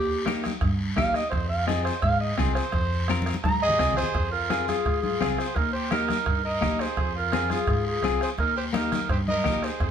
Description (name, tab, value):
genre	latin, cumbia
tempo	170 BPM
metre	4/4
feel	straight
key	F minor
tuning	A4 = 440 Hz
part	warm clarinet	melody	0.0-9.9 s	G4 to Bb5	-27 LUFS	right 1 dB	none
part	upright bass	bass	0.0-9.9 s	Bb1 to Ab2	-30 LUFS	equal	none
part	clean electric guitar	accompaniment	0.3-9.7 s	Bb3 to Bb4	-30 LUFS	left 5 dB	none
part	bombo	percussion	0.3-9.9 s	none	-30 LUFS	right 2 dB	none
part	congas	percussion	0.3-9.9 s	none	-33 LUFS	left 5 dB	none
part	guiro	percussion	0.3-9.9 s	none	-38 LUFS	left 3 dB	none
part	growling trumpet	second line	3.6-9.9 s	Eb4 to Bb4	-34 LUFS	right 4 dB	none
room	moderate large studio reverb, RT60 1.1 s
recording	band playing live in one room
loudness	-23 LUFS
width	side -8 dB against mid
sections	0.0-4.2 A section; 4.2-9.9 B section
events	clarinet solo 0.0-4.2; drum fill 3.1-4.2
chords	0.0 Eb; 1.3 Fm; 5.6 Eb; 7.0 Fm; 8.4 Eb